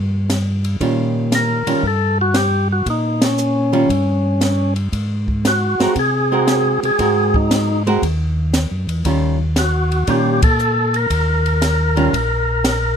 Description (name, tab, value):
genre	soul jazz organ trio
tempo	116 BPM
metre	4/4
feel	swing 68% on 8ths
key	Eb mixolydian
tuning	A4 = 440 Hz
part	mellow tonewheel organ	bass	0.0-13.0 s	Bb1 to C3	-19 LUFS	equal	slow rotary speaker
part	compact cocktail drum kit	drums	0.3-12.8 s	hi-hat, kick drum, ride cymbal, snare drum	-22 LUFS	equal	none
part	archtop guitar, miked and amplified	accompaniment	0.8-12.1 s	Eb3 to Bb4	-19 LUFS	right 3 dB	none
part	percussive tonewheel organ	melody	1.4-13.0 s	Db4 to Bb4	-18 LUFS	left 1 dB	slow rotary speaker
room	light reverb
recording	close, detailed microphones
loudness	-15 LUFS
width	side -8 dB against mid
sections	0.0-13.0 A section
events	band accent 3.1, 10.3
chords	0.0 Eb9; 4.9 Ab9; 9.0 Eb9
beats	0.29 | 0.80 1.32 1.83 2.35 | 2.87 3.38 3.90 4.41 | 4.93 5.44 5.96 6.47 | 6.99 7.50 8.02 8.53 | 9.05 9.56 10.08 10.59 | 11.11 11.62 12.14 12.65